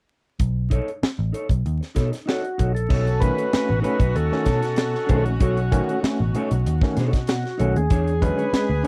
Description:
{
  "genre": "funk",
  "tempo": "96 BPM",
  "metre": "4/4",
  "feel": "straight",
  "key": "B mixolydian",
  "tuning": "A4 = 440 Hz",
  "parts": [
    { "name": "vintage muted picked electric bass", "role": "bass", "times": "0.4-8.8 s", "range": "A1 to B2", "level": "-25 LUFS", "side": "equal", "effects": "none" },
    { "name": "crisp fusion drum kit", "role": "drums", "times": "0.4-8.9 s", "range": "crash cymbal, hi-hat, kick drum, snare drum", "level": "-25 LUFS", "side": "equal", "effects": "none" },
    { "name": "mellow electric guitar", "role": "accompaniment", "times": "0.7-8.9 s", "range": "D4 to C#5", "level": "-32 LUFS", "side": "equal", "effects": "none" },
    { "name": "tonewheel organ", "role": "melody", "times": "2.3-8.9 s", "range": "F#4 to B4", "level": "-28 LUFS", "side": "equal", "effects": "overdrive, slow rotary speaker" },
    { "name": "warm horn section", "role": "second line", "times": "2.9-8.9 s", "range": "G#3 to G#4", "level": "-34 LUFS", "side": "equal", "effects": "none" },
    { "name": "overdriven tine electric piano", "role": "stabs", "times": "2.9-8.9 s", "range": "B2 to C#4", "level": "-29 LUFS", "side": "equal", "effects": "fast tremolo" }
  ],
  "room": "little or no reverb",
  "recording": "dry, close 1970s-style studio recording, vinyl crackle",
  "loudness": "-22 LUFS",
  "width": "mono",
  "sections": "0.4-2.9 A section; 2.9-8.9 B section",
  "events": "none",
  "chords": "0.4 B9; 7.9 E13"
}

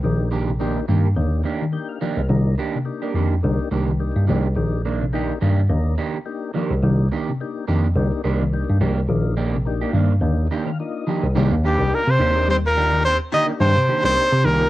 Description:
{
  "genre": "afrobeat",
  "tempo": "106 BPM",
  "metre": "4/4",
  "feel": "swing 56% on 16ths",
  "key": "C minor",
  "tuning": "A4 = 440 Hz",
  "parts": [
    { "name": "percussive tonewheel organ", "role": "accompaniment", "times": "0.0-14.7 s", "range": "Bb3 to G5", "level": "-30 LUFS", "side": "left 6 dB", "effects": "slow rotary speaker, chorus vibrato, cassette tape" },
    { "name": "mellow electric guitar", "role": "arpeggios", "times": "0.0-14.6 s", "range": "C3 to G3", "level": "-27 LUFS", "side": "left 4 dB", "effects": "lush chorus, cassette tape" },
    { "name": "bell-like tine electric piano", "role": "bass", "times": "0.0-14.7 s", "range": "Bb1 to C3", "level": "-19 LUFS", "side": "equal", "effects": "none" },
    { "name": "electric guitar at the edge of break-up", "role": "stabs", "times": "0.3-14.6 s", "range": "Eb3 to G4", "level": "-25 LUFS", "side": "right 5 dB", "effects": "phaser, cassette tape" },
    { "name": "edgy baritone saxophone", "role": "second line", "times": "11.6-14.7 s", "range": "G2 to Eb3", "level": "-31 LUFS", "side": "left 6 dB", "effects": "cassette tape" },
    { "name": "bright trumpet", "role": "melody", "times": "11.7-14.7 s", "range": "G4 to Eb5", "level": "-18 LUFS", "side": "equal", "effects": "cassette tape" },
    { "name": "clear alto saxophone", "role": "second line", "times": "11.7-14.7 s", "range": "G3 to Eb4", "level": "-31 LUFS", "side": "right 6 dB", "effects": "none" }
  ],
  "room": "light reverb",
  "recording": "home recording on cassette, lossy compression artefacts",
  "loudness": "-18 LUFS",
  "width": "side -16 dB against mid",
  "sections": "0.0-11.4 A section; 11.4-14.7 B section",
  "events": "tonewheel organ fill 1.5-2.3, 10.2-11.4",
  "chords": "0.0 Cm9"
}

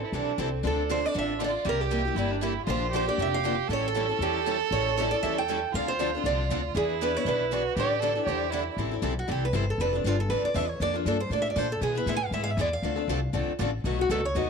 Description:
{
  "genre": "acoustic string swing (jazz manouche)",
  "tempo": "236 BPM",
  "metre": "4/4",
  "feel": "swing 55% on 8ths",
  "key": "D minor, A minor from 8.8 s",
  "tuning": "A4 = 438 Hz",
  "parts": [
    { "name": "picked steel-string acoustic guitar", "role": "melody", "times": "0.0-14.5 s", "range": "D4 to G#5", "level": "-30 LUFS", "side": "right 2 dB", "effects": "none" },
    { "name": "warm violin", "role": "second line", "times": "0.0-8.8 s", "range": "C4 to A4", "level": "-31 LUFS", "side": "right 10 dB", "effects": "none" },
    { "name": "upright bass", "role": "bass", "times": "0.0-14.5 s", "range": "F1 to B2", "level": "-31 LUFS", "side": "left 1 dB", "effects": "none" },
    { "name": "picked steel-string acoustic guitar", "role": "accompaniment", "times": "0.1-14.5 s", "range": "B2 to A4", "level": "-32 LUFS", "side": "left 12 dB", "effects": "none" },
    { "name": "picked steel-string acoustic guitar", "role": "accompaniment", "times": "0.1-14.5 s", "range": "B2 to B4", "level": "-34 LUFS", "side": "right 11 dB", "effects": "none" }
  ],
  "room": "light reverb, small room ambience",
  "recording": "1960s-style stereo with parts hard left and right",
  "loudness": "-25 LUFS",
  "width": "side -5 dB against mid",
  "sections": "0.6-8.8 A section; 8.8-14.5 B section",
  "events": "steel-string acoustic guitar solo 8.8-14.5",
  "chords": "0.0 Am7; 0.6 Dm7; 1.7 C7; 2.7 Bb6; 3.7 A7; 5.7 Dm7; 6.8 E7; 7.8 A7sus4; 8.8 Am7; 9.8 F6; 10.8 Bbmaj7/F; 11.8 E; 12.8 Dm7; 13.8 B7"
}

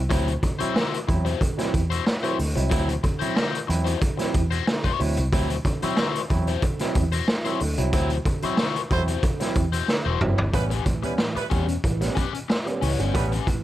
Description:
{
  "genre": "funk",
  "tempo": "92 BPM",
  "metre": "4/4",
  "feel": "straight",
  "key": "unclear",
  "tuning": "A4 = 440 Hz",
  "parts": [
    { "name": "vintage muted fingered electric bass", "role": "bass", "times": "0.0-13.4 s", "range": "E1 to E2", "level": "-25 LUFS", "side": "equal", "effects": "none" },
    { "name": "crunchy overdriven guitar", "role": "accompaniment", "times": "0.1-13.5 s", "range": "C#4 to C#5", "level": "-30 LUFS", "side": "left 9 dB", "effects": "wah, tube saturation" },
    { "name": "overdriven tine electric piano", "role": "stabs", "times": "0.1-13.6 s", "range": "A2 to E4", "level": "-29 LUFS", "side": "right 3 dB", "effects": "phaser" },
    { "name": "raw garage drum kit", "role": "drums", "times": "0.1-13.6 s", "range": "hi-hat, kick drum, snare drum, toms", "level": "-25 LUFS", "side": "equal", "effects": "none" },
    { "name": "clear horn section", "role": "second line", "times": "8.9-13.3 s", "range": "G3 to C5", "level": "-31 LUFS", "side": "right 3 dB", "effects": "none" }
  ],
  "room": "light reverb",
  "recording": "none",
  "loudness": "-21 LUFS",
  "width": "side -14 dB against mid",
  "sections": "0.0-10.5 A section; 10.5-13.6 B section",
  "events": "band accent 7.9-10.5; drum fill 9.9-10.5",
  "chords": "0.0 D9; 10.5 A9"
}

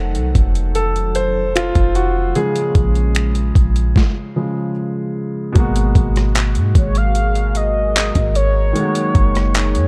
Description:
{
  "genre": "contemporary R&B",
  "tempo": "75 BPM",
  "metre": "4/4",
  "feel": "straight",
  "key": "G# dorian",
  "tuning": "A4 = 440 Hz",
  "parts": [
    { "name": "clear concert grand piano", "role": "accompaniment", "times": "0.0-9.9 s", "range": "B2 to B#4", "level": "-23 LUFS", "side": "equal", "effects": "none" },
    { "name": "chorused pulse-width pad", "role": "sustained chords", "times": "0.0-9.9 s", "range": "Gb3 to Gb5", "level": "-31 LUFS", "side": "equal", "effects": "none" },
    { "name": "warm 808-style bass", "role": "bass", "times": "0.0-9.9 s", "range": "F1 to G#2", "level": "-19 LUFS", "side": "equal", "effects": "none" },
    { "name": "dusty soul sampler-style drum kit", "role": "drums", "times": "0.1-9.9 s", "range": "finger snaps, handclaps, hi-hat, kick drum, rim click, snare drum", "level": "-19 LUFS", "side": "equal", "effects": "overdrive" },
    { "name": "mellow horn-like synth lead", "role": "melody", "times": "6.8-9.9 s", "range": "C#5 to E#5", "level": "-23 LUFS", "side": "equal", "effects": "chorus" }
  ],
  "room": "digital ambience",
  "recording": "dark, warm production",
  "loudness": "-17 LUFS",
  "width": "mono",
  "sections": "0.0-5.6 A section; 5.6-9.9 B section",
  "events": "grand piano solo 0.0-5.6; stop 4.0-5.6",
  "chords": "0.0 F7b9; 2.4 A#m7; 5.6 G#m9; 8.8 F#69"
}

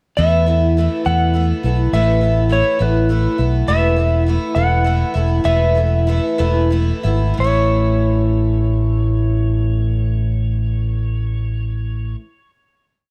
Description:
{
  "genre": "folk rock and heartland rock",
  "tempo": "59-69 BPM (dotted quarters)",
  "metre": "6/8",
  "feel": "straight",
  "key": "A major",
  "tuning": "A4 = 440 Hz",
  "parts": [
    { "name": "clean lap steel guitar", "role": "melody", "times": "0.2-12.2 s", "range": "B4 to F#5", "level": "-23 LUFS", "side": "equal", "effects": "none" },
    { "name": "picked twelve-string acoustic guitar", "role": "accompaniment", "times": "0.2-12.3 s", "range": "E2 to E4", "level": "-24 LUFS", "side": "equal", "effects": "none" },
    { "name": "fingered electric bass", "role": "bass", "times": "0.2-12.1 s", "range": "E1 to E2", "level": "-19 LUFS", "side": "equal", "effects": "none" }
  ],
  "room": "light reverb",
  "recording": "dark, warm production",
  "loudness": "-17 LUFS",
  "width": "mono",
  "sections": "0.2-7.4 pre-chorus; 7.4-11.5 final chord",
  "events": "slowing down 3.7-7.4",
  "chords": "0.2 Esus4; 1.9 Asus2; 3.7 Esus4; 7.4 A"
}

